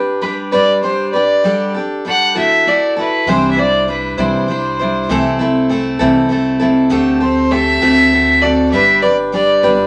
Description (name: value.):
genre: acoustic folk duo or small band.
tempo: 66 BPM (dotted quarters).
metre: 6/8.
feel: straight.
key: G major.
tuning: A4 = 441 Hz.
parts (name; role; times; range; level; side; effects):
picked steel-string acoustic guitar; accompaniment; 0.0-9.9 s; C3 to C5; -17 LUFS; equal; none.
rich fiddle; melody; 0.2-9.9 s; B4 to F#5; -16 LUFS; equal; none.
upright bass; bass; 3.3-9.9 s; G1 to D2; -27 LUFS; equal; none.
room: wet club ambience, RT60 0.5 s.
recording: none.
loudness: -14 LUFS.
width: mono.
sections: 0.0-9.9 A section.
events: fiddle solo 0.0-9.9.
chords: 0.0 G; 1.4 Dsus4; 2.4 Dadd9; 3.3 Cadd9; 5.1 Am/C; 6.9 D7sus4; 7.8 D7; 8.7 G.